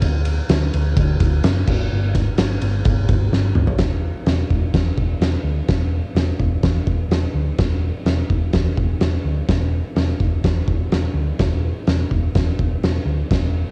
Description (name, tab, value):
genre	garage rock duo or trio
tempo	126 BPM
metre	4/4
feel	straight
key	E minor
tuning	A4 = 442 Hz
part	hollow-body short-scale picked electric bass	bass	0.0-13.6 s	E1 to E2	-22 LUFS	equal	none
part	oversized low-tuned drum kit	drums	0.0-13.4 s	crash cymbal, kick drum, ride cymbal, snare drum, toms	-22 LUFS	equal	none
room	little or no reverb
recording	home recording on cassette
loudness	-19 LUFS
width	mono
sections	0.0-3.8 A section; 3.8-13.7 B section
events	drum fill 3.3-3.8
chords	none